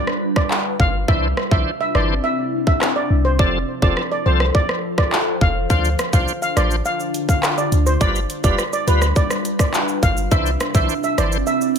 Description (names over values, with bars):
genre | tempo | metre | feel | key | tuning
dancehall | 104 BPM | 4/4 | straight | unclear | A4 = 440 Hz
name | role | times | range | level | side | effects
steel pan | melody | 0.0-11.6 s | B4 to F5 | -23 LUFS | right 3 dB | ping-pong delay
glassy FM pad | sustained chords | 0.0-11.8 s | C3 to C5 | -25 LUFS | left 1 dB | ensemble chorus, built-in reverb, phaser, sidechain pumping
island pop drum kit | drums | 0.1-11.8 s | handclaps, hi-hat, kick drum, rim click, shaker | -20 LUFS | equal | none
clean 808-style bass | bass | 0.8-11.4 s | F1 to D2 | -19 LUFS | equal | none
bright tonewheel organ | accompaniment | 1.1-11.4 s | E3 to C5 | -25 LUFS | left 2 dB | overdrive, chorus vibrato, slow rotary speaker
room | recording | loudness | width
digital ambience | none | -16 LUFS | side -7 dB against mid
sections
0.0-11.8 A section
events
break 0.0-5.7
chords
0.0 G7; 1.1 Cadd9; 3.4 F; 5.7 Dm7; 8.0 G7; 10.3 Cadd9